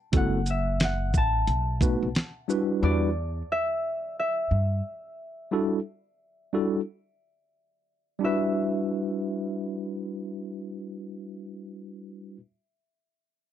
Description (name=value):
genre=hip hop, jazz-hop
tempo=89 BPM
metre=4/4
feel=swing 62% on 16ths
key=E minor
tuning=A4 = 440 Hz
part: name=concert harp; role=melody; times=0.0-12.4 s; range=D5 to A5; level=-30 LUFS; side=left 1 dB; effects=none
part: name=tine electric piano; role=accompaniment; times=0.1-12.4 s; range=G3 to B4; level=-27 LUFS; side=equal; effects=fast stereo tremolo
part: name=upright bass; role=bass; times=0.1-4.8 s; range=F#1 to G2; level=-27 LUFS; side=equal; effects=none
part: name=dusty soul sampler-style drum kit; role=drums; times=0.1-2.7 s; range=hi-hat, kick drum, shaker, snare drum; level=-24 LUFS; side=equal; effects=none
room=little or no reverb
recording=dry, close 1970s-style studio recording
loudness=-25 LUFS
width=side -10 dB against mid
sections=0.0-8.2 A section; 8.2-10.9 B section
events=none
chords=0.1 F#m7b5; 1.5 B7; 2.8 Em7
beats=| 0.13 0.81 1.48 2.15 | 2.83 3.50 4.17 4.85 | 5.52 6.20 6.87 7.55 | 8.22 8.89 9.57 10.24